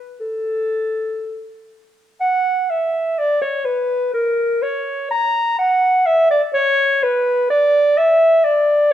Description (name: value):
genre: classical, baroque-style fantasia for unaccompanied clarinet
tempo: 58-64 BPM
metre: 3/4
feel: rubato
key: unclear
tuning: A4 = 440 Hz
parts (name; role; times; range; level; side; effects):
- dark clarinet; solo; 0.2-8.9 s; A4 to A#5; -15 LUFS; equal; none
room: moderate recital hall reverb, RT60 1.3 s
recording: none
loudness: -15 LUFS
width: side -11 dB against mid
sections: 0.0-8.9 A section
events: none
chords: none